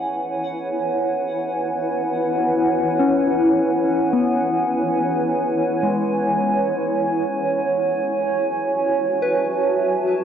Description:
ambient; 53 BPM; 4/4; straight; A4 = 439 Hz
granular cloud pad; sustained chords; 0.0-10.2 s; E4 to A5; -19 LUFS; right 1 dB; built-in reverb
soft synth bell; arpeggios; 0.0-10.2 s; G#3 to F#5; -26 LUFS; left 3 dB; chorus, phaser, diffuse ambient delay
wet cathedral reverb, RT60 5.7 s; in a vast, echoing space, nothing above 10.7 kHz; -18 LUFS; side -8 dB against mid
0.0-10.2 A section
0.0 E6
0.73 1.86 | 2.99 4.13 5.26 6.39 | 7.52 8.65 9.79

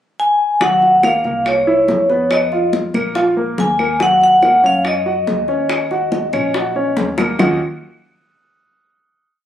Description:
Afro-Cuban jazz; 142 BPM; 4/4; straight; Eb minor; A4 = 441 Hz
vibraphone with medium hard mallets; melody; 0.2-6.9 s; Db5 to Ab5; -14 LUFS; equal
warm baby grand piano; accompaniment; 0.6-7.6 s; Eb3 to Gb5; -19 LUFS; equal
upright bass; bass; 0.6-7.6 s; A#1 to Gb2; -29 LUFS; equal
bongos; percussion; 0.6-7.5 s; -23 LUFS; left 3 dB
congas; percussion; 0.6-7.5 s; -25 LUFS; equal
claves; percussion; 1.0-7.5 s; -26 LUFS; equal
moderate studio reverb, RT60 0.8 s; recorded on a phone in the room, club ambience, compression; -13 LUFS; side -11 dB against mid
0.0-0.6 pickup bar; 0.6-7.4 A section; 7.4-9.1 final chord
drum fill 7.0-7.4
0.0 N.C.; 0.6 Ebmadd9; 1.5 C7b9; 2.3 Bmaj7#11; 3.2 Bb5; 4.0 Ebm7; 7.4 Ebm9
0.18 | 0.61 1.03 1.46 1.88 | 2.31 2.73 3.15 3.58 | 4.00 4.42 4.85 5.27 | 5.70 6.12 6.54 6.97 | 7.39

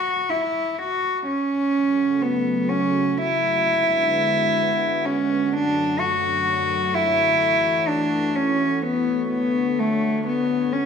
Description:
folk; 63 BPM; 4/4; straight; F# minor; A4 = 440 Hz
warm cello; melody; 0.0-10.9 s; A3 to F#4; -19 LUFS; equal; slapback echo
lush unison pad; sustained chords; 1.7-10.9 s; F#2 to C#5; -28 LUFS; equal; chorus
light reverb; close, detailed microphones; -19 LUFS; side -6 dB against mid
0.0-1.7 A section; 1.7-10.9 A section
0.0 N.C.; 1.7 F#m; 3.6 G#m7b5; 5.5 Dmaj7/F#; 7.4 F#m7; 9.3 Dmaj7
0.74 | 1.70 2.66 3.61 4.56 | 5.51 6.45 7.40 8.35 | 9.29 10.24

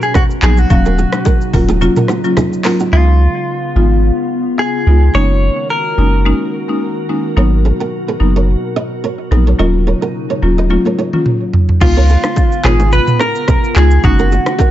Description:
afrobeats; 108 BPM; 4/4; swing 55% on 16ths; A4 = 440 Hz
direct-recorded clean electric guitar; melody; 0.0-7.1, 11.8-14.7 s; F4 to Db5; -18 LUFS; equal; lush chorus, tape echo
glassy FM pad; sustained chords; 0.0-14.7 s; Cb3 to Bb4; -22 LUFS; left 1 dB; ensemble chorus, built-in reverb
afro-pop drum kit; drums; 0.0-2.9, 10.7-14.7 s; crash cymbal, handclaps, hi-hat, kick drum, rim click, shaker, toms; -14 LUFS; equal
bongos and congas; percussion; 0.1-2.5, 11.8-14.7 s; -21 LUFS; left 1 dB
flamenco guitar; riff; 0.2-2.9, 7.4-14.7 s; Eb4 to Eb5; -21 LUFS; right 6 dB; tape echo
buzzing marimba with hard mallets; accompaniment; 0.4-14.6 s; Gb3 to F5; -18 LUFS; left 2 dB
punchy sub bass; bass; 0.4-14.4 s; Eb1 to Db2; -11 LUFS; equal
little or no reverb; nothing above 7.7 kHz; -11 LUFS; side -13 dB against mid
0.0-2.9 A section; 2.9-11.8 B section; 11.8-14.7 A section
kick muted 1.8-2.9; drum fill 10.7-11.8
0.0 Abm9; 0.7 Ebm7; 2.9 Db7; 5.1 Gb6; 7.4 Abm9; 9.6 Ebm7; 11.8 Db7; 14.0 Gb6
0.15 | 0.70 1.26 1.81 2.37 | 2.92 3.48 4.04 4.59 | 5.15 5.70 6.26 6.81 | 7.37 7.92 8.48 9.04 | 9.59 10.15 10.70 11.26 | 11.81 12.37 12.93 13.48 | 14.04 14.59

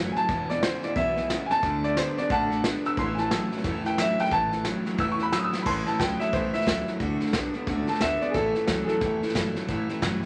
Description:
rockabilly; 179 BPM; 4/4; swing 61% on 8ths; A major; A4 = 440 Hz
picked steel-string acoustic guitar; accompaniment; 0.0-10.3 s; E2 to F#4; -36 LUFS; equal
electric guitar through a small old amp; riff; 0.0-10.2 s; E2 to B3; -32 LUFS; equal
upright bass; bass; 0.0-10.3 s; E1 to A2; -41 LUFS; equal
bright upright piano; melody; 0.1-9.5 s; G#4 to E6; -29 LUFS; equal
vintage brush drum kit; drums; 0.2-10.3 s; crash cymbal, hi-hat, kick drum, snare drum; -33 LUFS; equal
moderate large studio reverb, RT60 1.1 s; -26 LUFS; mono
0.0-5.7 A section; 5.7-10.3 B section
drum fill 5.5; upright piano solo 5.7-10.3
0.3 E; 1.6 D; 3.0 A; 7.0 D; 8.3 A
| 0.29 0.63 0.97 1.30 | 1.64 1.97 2.31 2.64 | 2.98 3.31 3.65 3.99 | 4.32 4.66 4.99 5.33 | 5.66 6.00 6.33 6.67 | 7.01 7.34 7.68 8.01 | 8.35 8.69 9.02 9.36 | 9.69 10.03

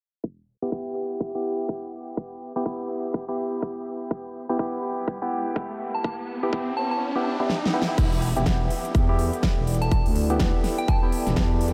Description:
bass house; 124 BPM; 4/4; swing 60% on 16ths; E minor; A4 = 442 Hz
electronic kick drum; drums; 0.2-11.5 s; -26 LUFS; equal; high-pass filter on kick
percussive organ stab; stabs; 0.6-11.7 s; B3 to G4; -30 LUFS; equal; chorus, sidechain pumping, diffuse ambient delay
riser; sound effects; 5.1-8.0 s; -36 LUFS; equal
soft synth bell; melody; 5.9-11.6 s; G5 to A5; -35 LUFS; equal; chorus, phaser, diffuse ambient delay
big-room dance drum kit; drums; 7.5-11.7 s; crash cymbal, hi-hat, snare drum; -32 LUFS; equal
growling FM bass; bass; 8.0-11.7 s; E1 to E2; -27 LUFS; equal; tube saturation, sidechain pumping
warbly tape-like pad; texture; 8.9-11.7 s; E4 to G5; -36 LUFS; equal; chorus, built-in reverb, phaser, sidechain pumping
moderate huge ambient reverb, RT60 6.3 s; dreamy mix soaked in reverb, low-pass filter; -26 LUFS; mono
0.2-8.0 A section; 8.0-11.7 B section
filter sweep on synth stab 0.2-8.0; filter sweep 0.2-8.0; riser 5.1-8.0; drum fill 7.5-8.0
0.2 Em
| 0.24 0.72 1.21 1.69 | 2.17 2.66 3.14 3.62 | 4.11 4.59 5.08 5.56 | 6.04 6.53 7.01 7.50 | 7.98 8.46 8.95 9.43 | 9.91 10.40 10.88 11.37

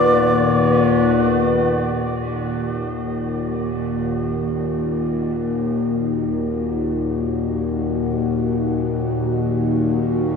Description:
dark ambient drone; free time; Eb harmonic minor; A4 = 440 Hz
breathy shakuhachi; melody; 0.0-1.2 s; D5; -24 LUFS; left 1 dB; dub echo
deep dark ambient pad; sustained chords; 0.0-10.4 s; Eb4 to F5; -24 LUFS; right 1 dB; chorus, built-in reverb
tubular bells; arpeggios; 0.0-3.7 s; F#4; -30 LUFS; right 3 dB; dub echo
bowed-like drone; drone; 0.0-10.4 s; Eb2 to Bb2; -20 LUFS; left 2 dB; built-in reverb
wet spring reverb, RT60 2.4 s; echo-heavy mix; -18 LUFS; side -5 dB against mid
0.0-2.2 A section; 2.2-10.4 B section
fade-in on ambient pad 2.2-10.4
0.0 Bm; 2.2 Ebm
free time

